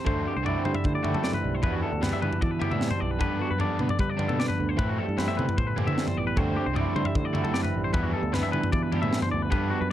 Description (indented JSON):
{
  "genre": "math rock and midwest emo",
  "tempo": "152 BPM",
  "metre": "4/4",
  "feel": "straight",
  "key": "unclear",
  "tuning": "A4 = 441 Hz",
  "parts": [
    { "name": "electric guitar through a small old amp", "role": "accompaniment", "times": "0.0-9.9 s", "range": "E2 to F#4", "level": "-32 LUFS", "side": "right 5 dB", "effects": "none" },
    { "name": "twangy electric guitar", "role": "arpeggios", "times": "0.0-9.9 s", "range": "F#4 to E5", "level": "-32 LUFS", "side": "left 5 dB", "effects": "none" },
    { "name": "raw garage guitar", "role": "riff", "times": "0.1-9.8 s", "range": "D3 to F#4", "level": "-33 LUFS", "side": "equal", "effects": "overdrive" },
    { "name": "picked electric bass", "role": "bass", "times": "0.1-9.9 s", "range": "A1 to G3", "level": "-31 LUFS", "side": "equal", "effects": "none" },
    { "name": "crisp fusion drum kit", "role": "drums", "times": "0.1-9.6 s", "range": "kick drum, snare drum, toms", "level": "-28 LUFS", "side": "equal", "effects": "none" }
  ],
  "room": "light reverb",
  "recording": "cassette tape",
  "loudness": "-24 LUFS",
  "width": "side -12 dB against mid",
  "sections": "0.1-9.9 A section",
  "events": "none",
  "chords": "0.1 Em11; 3.2 Gmaj7; 4.8 Am9; 7.9 Em11"
}